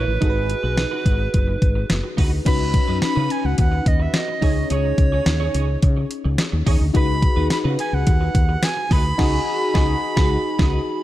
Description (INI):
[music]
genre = 1980s-style pop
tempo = 107 BPM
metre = 4/4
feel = straight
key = unclear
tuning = A4 = 440 Hz
[part]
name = bright tenor recorder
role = melody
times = 0.0-11.0 s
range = B4 to B5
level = -26 LUFS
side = right 3 dB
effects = digital delay
[part]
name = FM electric piano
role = accompaniment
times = 0.0-11.0 s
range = C#4 to C#5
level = -26 LUFS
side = left 2 dB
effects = chorus, phaser
[part]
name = clean electric guitar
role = riff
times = 0.0-10.8 s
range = C#4 to C#5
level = -32 LUFS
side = right 5 dB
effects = ensemble chorus, digital delay
[part]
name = woody fretless electric bass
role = bass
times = 0.0-10.8 s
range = F#1 to C#3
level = -22 LUFS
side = equal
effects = none
[part]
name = clean 12-bit digital drum machine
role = drums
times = 0.2-10.7 s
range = crash cymbal, hi-hat, kick drum, snare drum, tambourine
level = -20 LUFS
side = equal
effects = none
[sound]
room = light reverb, digital ambience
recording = dark, warm production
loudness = -17 LUFS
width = side -14 dB against mid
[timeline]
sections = 0.0-2.5 A section; 2.5-11.0 B section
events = band accent 9.2-11.0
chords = 0.2 G#m7; 2.5 Badd9/C#; 4.4 G#sus4/C#; 6.9 G#m7/C#